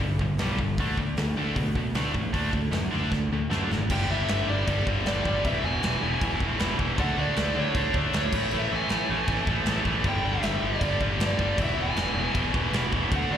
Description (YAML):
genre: punk rock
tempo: 156 BPM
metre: 4/4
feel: straight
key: unclear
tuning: A4 = 440 Hz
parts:
  - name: tight distorted guitar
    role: riff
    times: 0.0-13.4 s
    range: E2 to D4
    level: -27 LUFS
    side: equal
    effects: distortion, slapback echo
  - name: fuzz picked electric bass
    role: bass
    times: 0.0-13.4 s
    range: E1 to B2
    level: -29 LUFS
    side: equal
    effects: overdrive
  - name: big rock drum kit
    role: drums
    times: 0.0-13.2 s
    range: crash cymbal, hi-hat, kick drum, snare drum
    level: -30 LUFS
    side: equal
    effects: none
  - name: dark smooth lead guitar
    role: melody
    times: 3.9-13.4 s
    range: C#5 to G#5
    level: -32 LUFS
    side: equal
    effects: overdrive, digital delay
room: small room ambience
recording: live gig heard through the venue's PA, recital hall reverb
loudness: -23 LUFS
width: side -9 dB against mid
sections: 0.0-3.9 A section; 3.9-13.4 B section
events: drum fill 3.1-3.9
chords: 0.0 G; 0.8 D5; 3.9 G5; 5.4 E; 7.0 D5; 8.3 A5; 10.0 G5; 11.6 E